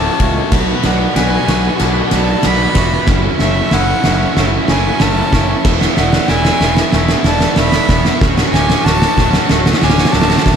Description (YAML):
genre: post-rock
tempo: 94 BPM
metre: 4/4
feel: straight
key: D lydian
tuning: A4 = 440 Hz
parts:
  - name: dark violin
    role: melody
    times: 0.0-10.6 s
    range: E5 to B5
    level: -20 LUFS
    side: equal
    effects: analog delay
  - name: shimmering ambient pad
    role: sustained chords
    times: 0.0-10.6 s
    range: D3 to F#4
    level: -27 LUFS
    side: right 1 dB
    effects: none
  - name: twangy electric guitar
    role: arpeggios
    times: 0.0-10.6 s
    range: D2 to B4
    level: -25 LUFS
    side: left 2 dB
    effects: phaser, analog delay
  - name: vibraphone with medium mallets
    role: arpeggios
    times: 0.0-10.6 s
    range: C#5 to D6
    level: -27 LUFS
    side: right 6 dB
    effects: analog delay
  - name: sludgy distorted guitar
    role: riff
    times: 0.0-10.5 s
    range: B3 to B4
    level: -22 LUFS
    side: left 15 dB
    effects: overdrive
  - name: fuzz picked electric bass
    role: bass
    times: 0.0-10.6 s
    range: D1 to C#2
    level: -18 LUFS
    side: equal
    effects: overdrive
  - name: oversized low-tuned drum kit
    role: drums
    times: 0.2-10.6 s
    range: crash cymbal, kick drum, ride cymbal, snare drum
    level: -14 LUFS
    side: right 1 dB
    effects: none
  - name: thick fuzz guitar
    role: riff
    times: 0.5-10.6 s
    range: B3 to B4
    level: -21 LUFS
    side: right 12 dB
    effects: distortion
room: studio ambience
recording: dark, warm production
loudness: -11 LUFS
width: side -7 dB against mid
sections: 0.0-10.6 A section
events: build-up 0.0-10.6; drum fill 0.0-10.6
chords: 0.0 Dmaj7; 0.5 Bm7; 3.1 F#m7; 5.7 E7sus4; 8.2 Dmaj7